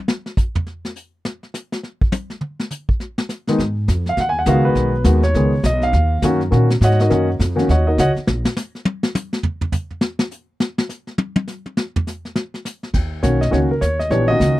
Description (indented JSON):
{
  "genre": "jazz piano trio",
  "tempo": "205 BPM",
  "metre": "4/4",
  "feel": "swing 62% on 8ths",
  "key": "Eb minor",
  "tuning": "A4 = 440 Hz",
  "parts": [
    { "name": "vintage brush drum kit", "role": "drums", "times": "0.1-14.6 s", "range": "brushed snare drum, crash cymbal, hi-hat, kick drum, snare drum, toms", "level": "-21 LUFS", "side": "equal", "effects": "none" },
    { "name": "warm grand piano", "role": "melody", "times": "3.5-8.1, 13.2-14.6 s", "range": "Eb3 to Ab5", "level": "-17 LUFS", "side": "equal", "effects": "none" },
    { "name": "upright bass", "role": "bass", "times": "3.6-8.4, 12.9-14.6 s", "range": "Bb1 to Bb2", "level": "-17 LUFS", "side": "equal", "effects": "none" }
  ],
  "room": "little or no reverb",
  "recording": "dry, close 1970s-style studio recording",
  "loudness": "-16 LUFS",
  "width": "side -16 dB against mid",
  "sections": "0.0-12.9 A section; 12.9-14.6 B section",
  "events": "grand piano solo 0.0-12.9; drum solo 0.0-3.6, 8.3-12.9",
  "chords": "0.0 N.C.; 3.6 Abm7; 5.9 Ebm7; 8.3 N.C.; 12.9 Ebm7"
}